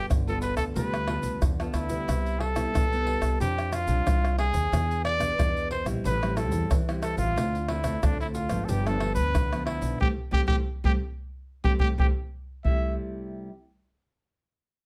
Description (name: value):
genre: samba and choro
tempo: 91 BPM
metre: 4/4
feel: straight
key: C major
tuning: A4 = 438 Hz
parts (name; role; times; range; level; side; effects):
- warm trumpet; melody; 0.0-13.0 s; D4 to E5; -32 LUFS; equal; none
- nylon-string guitar; accompaniment; 0.0-13.5 s; G2 to A4; -36 LUFS; equal; none
- upright bass; bass; 0.1-13.0 s; G1 to F2; -32 LUFS; equal; none
- tube shaker, surdo, pandeiro and tamborim; percussion; 0.1-12.8 s; none; -31 LUFS; equal; none
room: light reverb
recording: none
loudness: -27 LUFS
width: mono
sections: 0.0-12.7 A section; 12.7-14.9 B section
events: band accent 10.0-12.7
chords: 0.0 G9; 2.1 Cmaj7; 3.4 Fm6; 4.7 E7; 6.0 Am7; 7.4 Dm7; 8.7 G7; 10.0 C5; 12.7 C6